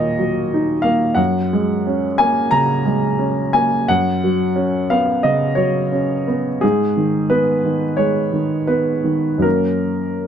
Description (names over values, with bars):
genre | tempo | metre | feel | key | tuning
neoclassical minimalist piano | 87 BPM | 4/4 | uneven beats, rubato | F# major | A4 = 439 Hz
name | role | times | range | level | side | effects
warm upright piano | solo | 0.0-10.3 s | D#2 to A#5 | -15 LUFS | equal | none
room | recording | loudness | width
light reverb | close, detailed microphones | -15 LUFS | side -8 dB against mid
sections
0.0-10.3 A section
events
none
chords
0.0 D#m; 1.2 F#add9; 3.9 Bsus2/F#; 6.6 G#m; 9.4 F#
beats
0.53 | 1.19 1.85 2.52 3.20 | 3.88 4.58 5.26 5.94 | 6.62 7.30 7.99 8.71 | 9.45 10.20